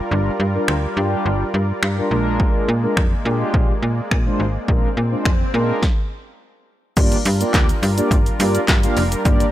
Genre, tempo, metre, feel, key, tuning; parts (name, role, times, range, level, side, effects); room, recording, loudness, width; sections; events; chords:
dance-pop; 105 BPM; 4/4; straight; A4 = 440 Hz
soft supersaw; sustained chords; 0.0-9.5 s; G3 to D5; -27 LUFS; equal; sidechain pumping
mellow synth brass; accompaniment; 0.1-9.5 s; G3 to F5; -23 LUFS; equal; chorus, sidechain pumping
slap-like FM bass; bass; 0.1-9.4 s; F1 to Bb2; -20 LUFS; equal; sidechain pumping
punchy analog drum machine; drums; 0.7-9.5 s; crash cymbal, finger snaps, handclaps, hi-hat, kick drum, shaker, snare drum; -18 LUFS; equal
swell; sound effects; 4.5-5.8 s; -32 LUFS; equal
little or no reverb; dry, gritty hardware recording; -16 LUFS; side -13 dB against mid
0.0-7.0 A section; 7.0-9.5 B section
swell 4.5-7.0; stop 5.8-7.0
0.0 Gm7; 2.1 Bb7; 7.0 Gm7